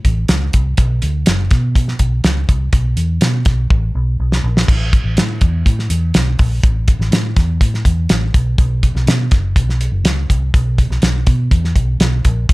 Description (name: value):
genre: uptempo 1960s-style soul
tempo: 123 BPM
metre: 4/4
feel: straight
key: A major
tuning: A4 = 440 Hz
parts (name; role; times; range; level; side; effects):
- vintage muted fingered electric bass; bass; 0.0-12.5 s; F#1 to B2; -16 LUFS; equal; none
- cloth-damped thuddy drum kit; drums; 0.0-12.5 s; crash cymbal, hi-hat, kick drum, snare drum; -14 LUFS; equal; none
room: little or no reverb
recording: none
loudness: -13 LUFS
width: side -21 dB against mid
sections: 0.0-4.7 A section; 4.7-12.5 B section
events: drum fill 3.7-4.7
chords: none